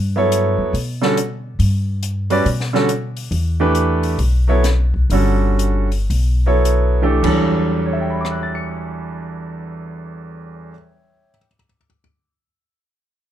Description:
modal jazz; 98-140 BPM; 4/4; swing 65% on 8ths; E dorian; A4 = 440 Hz
upright bass; bass; 0.0-10.7 s; G1 to B2; -18 LUFS; left 1 dB
clear grand piano; accompaniment; 0.2-12.0 s; E2 to C#7; -18 LUFS; right 2 dB
open jazz drum kit; drums; 0.3-8.3 s; crash cymbal, hi-hat, kick drum, rim click, snare drum; -28 LUFS; left 3 dB
light reverb; close, detailed microphones; -15 LUFS; side -11 dB against mid
0.0-7.2 A section; 7.2-12.1 B section
slowing down 3.3-7.2
0.0 Em11

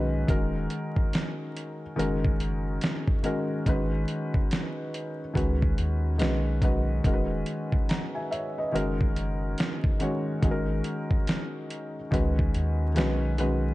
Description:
lo-fi hip hop; 71 BPM; 4/4; swing 63% on 16ths; G# minor; A4 = 441 Hz
felt-muted upright piano; accompaniment; 0.0-13.7 s; D#3 to A#5; -29 LUFS; left 1 dB; low-pass filter
warm sub bass; bass; 0.0-13.7 s; E1 to D#2; -28 LUFS; equal
dusty soul sampler-style drum kit; drums; 0.3-13.6 s; hi-hat, kick drum, snare drum; -26 LUFS; equal; overdrive
digital ambience; dark, warm production, vinyl crackle, nothing above 10.4 kHz; -25 LUFS; side -18 dB against mid
0.0-13.7 A section
0.3 Emaj7; 2.0 F#; 3.7 G#m7; 5.4 C#sus2; 6.2 B; 7.0 Emaj7; 8.7 F#; 10.4 G#5; 12.1 C#sus2; 13.0 B

